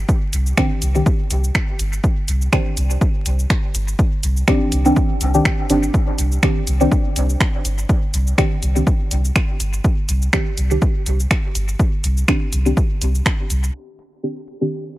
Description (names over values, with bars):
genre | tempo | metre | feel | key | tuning
dub techno | 123 BPM | 4/4 | swing 55% on 16ths | C minor | A4 = 439 Hz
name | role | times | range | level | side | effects
soft dub sub bass | bass | 0.0-13.7 s | G1 to C2 | -18 LUFS | equal | sidechain pumping
deep house drum kit | drums | 0.1-14.8 s | finger snaps, hi-hat, shaker | -25 LUFS | right 1 dB | overdrive, dub echo
electronic kick drum | drums | 0.1-13.4 s | none | -18 LUFS | equal | overdrive
deep mellow chord stab | stabs | 0.6-14.9 s | Eb3 to G4 | -21 LUFS | equal | chorus, phaser, sidechain pumping, dub echo
room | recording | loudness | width
digital ambience | vinyl crackle, low-pass filter | -16 LUFS | side -16 dB against mid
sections
0.0-13.7 A section; 13.7-15.0 B section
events
filter sweep on synth stab 0.0-13.7, 13.7-15.0; filter sweep 13.7-15.0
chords
0.0 Cmadd9